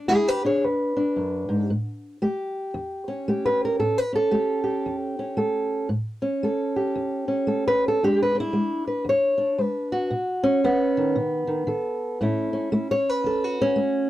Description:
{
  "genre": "acoustic country blues, solo or duo",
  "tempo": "114 BPM",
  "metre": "4/4",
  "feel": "swing 61% on 8ths",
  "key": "unclear",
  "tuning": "A4 = 437 Hz",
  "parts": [
    { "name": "fingerpicked old ladder-braced acoustic guitar", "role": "solo", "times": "0.0-14.1 s", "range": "E2 to C#5", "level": "-22 LUFS", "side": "equal", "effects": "none" }
  ],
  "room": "moderate booth ambience, RT60 0.2 s",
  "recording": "dry, close 1970s-style studio recording",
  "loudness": "-22 LUFS",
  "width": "side -14 dB against mid",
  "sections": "0.0-14.1 A section",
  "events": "none",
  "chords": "0.0 E7; 1.7 A7; 8.0 E7; 10.1 B7; 12.2 A",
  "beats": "0.09 0.62 1.15 | 1.68 2.21 2.73 3.26 | 3.79 4.32 4.84 5.37 | 5.90 6.42 6.95 7.48 | 8.00 8.53 9.05 9.58 | 10.11 10.63 11.15 11.68 | 12.20 12.73 13.25 13.78"
}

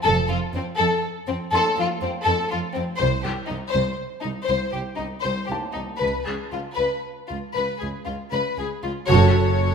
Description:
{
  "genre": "cinematic, suspense film score",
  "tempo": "60 BPM",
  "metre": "3/4",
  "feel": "straight",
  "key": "unclear",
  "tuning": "A4 = 439 Hz",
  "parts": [
    { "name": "warm studio cello section", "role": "bass", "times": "0.0-9.7 s", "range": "C2 to F#2", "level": "-26 LUFS", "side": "right 3 dB", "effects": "none" },
    { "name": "felt-muted upright piano", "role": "texture", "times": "0.0-9.1 s", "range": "A5 to C6", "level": "-34 LUFS", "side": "equal", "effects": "none" },
    { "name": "clear studio violin section", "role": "melody", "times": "0.1-9.7 s", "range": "C4 to C#5", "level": "-24 LUFS", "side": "left 4 dB", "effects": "none" },
    { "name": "warm studio double bass section", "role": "bass", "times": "0.1-9.7 s", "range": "F1 to C#2", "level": "-25 LUFS", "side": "right 5 dB", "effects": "none" },
    { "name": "warm studio violin section", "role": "second line", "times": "9.1-9.7 s", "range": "A4", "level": "-24 LUFS", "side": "left 3 dB", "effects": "none" },
    { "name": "dark studio viola section", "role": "accompaniment", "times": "9.1-9.7 s", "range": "F#4", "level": "-23 LUFS", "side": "right 4 dB", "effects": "none" }
  ],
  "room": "moderate scoring stage reverb, RT60 1.5 s",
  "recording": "minimal, uncompressed stereo recording",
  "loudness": "-21 LUFS",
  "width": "side -6 dB against mid",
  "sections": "0.0-9.1 A section",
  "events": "band accent 9.1-9.7",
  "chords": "0.0 F; 3.0 N.C.; 6.0 C#7(no3); 9.1 F#m",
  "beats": "| 0.06 1.05 2.03 | 3.01 4.00 5.00 | 6.02 7.05 8.08 | 9.09"
}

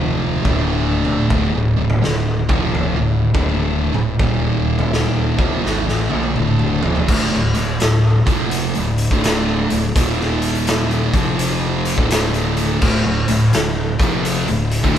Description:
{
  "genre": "stoner and doom metal",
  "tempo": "83 BPM",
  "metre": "4/4",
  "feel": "swing 65% on 8ths",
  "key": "D phrygian",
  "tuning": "A4 = 439 Hz",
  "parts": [
    { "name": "thick fuzz guitar", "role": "riff", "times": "0.0-15.0 s", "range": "D2 to Bb3", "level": "-22 LUFS", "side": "left 8 dB", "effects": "distortion" },
    { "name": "thick fuzz guitar", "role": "riff", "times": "0.0-15.0 s", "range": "D2 to Bb3", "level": "-19 LUFS", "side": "right 3 dB", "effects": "distortion" },
    { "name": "fuzz fingered electric bass", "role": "bass", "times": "0.0-15.0 s", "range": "D1 to Bb1", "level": "-25 LUFS", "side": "equal", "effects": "overdrive" },
    { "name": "raw garage drum kit", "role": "drums", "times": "0.5-15.0 s", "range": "crash cymbal, hi-hat, kick drum, snare drum, toms", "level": "-20 LUFS", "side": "equal", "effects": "none" },
    { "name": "biting overdriven guitar", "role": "riff", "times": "12.8-15.0 s", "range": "D2 to F3", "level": "-24 LUFS", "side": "left 1 dB", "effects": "none" }
  ],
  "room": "moderate studio ambience, RT60 0.5 s",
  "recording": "band playing live in one room",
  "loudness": "-15 LUFS",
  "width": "side -10 dB against mid",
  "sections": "0.0-7.1 A section; 7.1-15.0 B section",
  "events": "drum fill 5.6-7.1",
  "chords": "0.4 Dm; 4.2 Eb5; 5.3 Dm; 10.0 Eb5; 11.0 F5; 11.9 Dm",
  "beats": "0.57 | 1.30 2.02 2.75 3.47 | 4.20 4.92 5.64 6.36 | 7.08 7.80 8.52 9.24 | 9.96 10.67 11.39 12.11 | 12.82 13.54 14.25 14.97"
}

